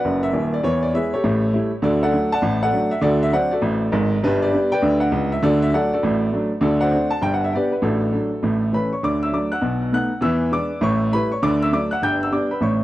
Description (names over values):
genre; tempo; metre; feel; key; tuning
jazz, stride piano; 200 BPM; 4/4; swing 63% on 8ths; D major; A4 = 440 Hz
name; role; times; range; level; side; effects
warm baby grand piano; solo; 0.0-12.8 s; Eb1 to G6; -18 LUFS; equal; tape echo
room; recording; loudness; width
light reverb; dry, close 1970s-style studio recording; -18 LUFS; side -15 dB against mid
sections
0.0-9.0 A section; 9.0-12.8 B section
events
none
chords
0.0 Bm; 0.6 E; 1.2 A7; 1.8 D; 3.0 D7; 4.2 G; 5.4 D; 6.6 D7; 7.2 G; 7.8 D/A; 8.4 A; 9.0 D; 9.6 B7; 10.2 E7; 10.8 A7; 11.4 D; 12.0 G